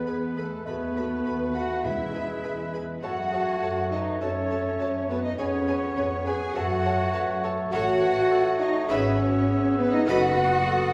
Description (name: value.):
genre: quick classical-period movement for symphony orchestra.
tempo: 102 BPM.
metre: 4/4.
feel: rubato.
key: E major.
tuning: A4 = 440 Hz.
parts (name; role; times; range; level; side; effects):
rich studio violin section; melody; 0.0-10.9 s; A4 to G#5; -41 LUFS; equal; none.
hollow concert flute; second line; 0.0-10.7 s; A4 to G#5; -33 LUFS; equal; none.
warm clarinet; second line; 0.0-10.9 s; F#4 to C#5; -38 LUFS; equal; none.
warm oboe; second line; 0.0-10.9 s; B4 to E5; -39 LUFS; equal; none.
warm bassoon; accompaniment; 0.0-10.9 s; G#3 to B3; -35 LUFS; equal; none.
dark French horn section; sustained chords; 0.0-10.9 s; A3 to G#4; -30 LUFS; equal; none.
rich symphonic cello section; bass; 0.0-10.9 s; A3 to G#4; -35 LUFS; equal; none.
clear chamber violin section; second line; 0.1-10.4 s; B4 to B5; -40 LUFS; equal; none.
rich chamber viola section; accompaniment; 0.1-10.4 s; F#4 to B4; -39 LUFS; equal; none.
warm chamber double bass section; bass; 0.1-10.6 s; F#1 to F#2; -35 LUFS; equal; none.
timpani; percussion; 1.8-2.7 s; E2; -42 LUFS; equal; none.
room: wet recital hall reverb, RT60 1.6 s.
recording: recorded in a church or concert hall.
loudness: -25 LUFS.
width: mono.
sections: 0.0-10.9 A section.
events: none.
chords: 0.0 E; 0.7 B7/D#; 1.8 E; 3.0 F#m; 5.4 C#7/E#; 6.6 F#m; 7.7 F#m/A; 8.9 E/G#; 10.1 B7/F#.